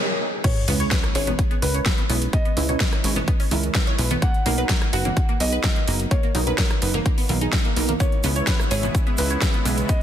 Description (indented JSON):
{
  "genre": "progressive house",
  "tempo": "127 BPM",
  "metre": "4/4",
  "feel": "straight",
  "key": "C# dorian",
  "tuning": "A4 = 441 Hz",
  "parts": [
    { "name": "warm concert grand piano", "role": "melody", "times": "0.4-10.0 s", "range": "B4 to F#5", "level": "-30 LUFS", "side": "left 1 dB", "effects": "digital delay" },
    { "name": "wide unison pluck", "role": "arpeggios", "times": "0.4-9.9 s", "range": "A#3 to C#5", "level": "-29 LUFS", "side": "equal", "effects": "lush chorus, sidechain pumping, digital delay" },
    { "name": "big-room dance drum kit", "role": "drums", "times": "0.4-10.0 s", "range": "crash cymbal, hi-hat, rim click, snare drum", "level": "-27 LUFS", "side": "equal", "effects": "overdrive, sidechain pumping on hats, sidechain pumping on cymbals" },
    { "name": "breakbeat sampler-style drum kit", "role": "drums", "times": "0.4-10.0 s", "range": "hi-hat, snare drum", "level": "-37 LUFS", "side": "right 2 dB", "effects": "none" },
    { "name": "electronic kick drum", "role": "drums", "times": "0.4-10.0 s", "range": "none", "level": "-21 LUFS", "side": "equal", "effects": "overdrive, high-pass filter on kick" },
    { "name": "sub drop", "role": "sound effects", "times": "0.4-2.3 s", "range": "none", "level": "-31 LUFS", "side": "equal", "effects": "none" },
    { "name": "deep mellow chord stab", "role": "stabs", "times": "0.7-9.8 s", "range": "F#3 to C#5", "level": "-29 LUFS", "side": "right 4 dB", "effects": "chorus, sidechain pumping, digital delay" },
    { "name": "plucky analog bass", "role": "bass", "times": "0.7-9.8 s", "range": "F#1 to C#2", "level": "-24 LUFS", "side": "equal", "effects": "sidechain pumping" },
    { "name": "congas", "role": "percussion", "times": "0.7-8.9 s", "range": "none", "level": "-31 LUFS", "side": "right 1 dB", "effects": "sidechain pumping on perc" },
    { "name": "supersaw pad", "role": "sustained chords", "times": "8.0-10.0 s", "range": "C#3 to F#4", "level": "-31 LUFS", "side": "right 1 dB", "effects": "sidechain pumping" },
    { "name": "egg shaker", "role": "percussion", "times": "8.0-10.0 s", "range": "none", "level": "-36 LUFS", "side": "right 5 dB", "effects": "none" }
  ],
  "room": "light reverb, digital ambience",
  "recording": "dense, heavily limited modern master",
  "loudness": "-19 LUFS",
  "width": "side -10 dB against mid",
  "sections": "0.4-10.0 A section",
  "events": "stop 0.0-0.4; drop 0.4-10.0; impact 0.4-2.3",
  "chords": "0.4 C#m7; 4.2 Bmaj7; 8.0 C#m7",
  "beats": "| 0.44 0.92 1.39 1.86 | 2.33 2.81 3.28 3.75 | 4.22 4.70 5.17 5.64 | 6.11 6.58 7.06 7.53 | 8.00 8.47 8.95 9.42 | 9.89"
}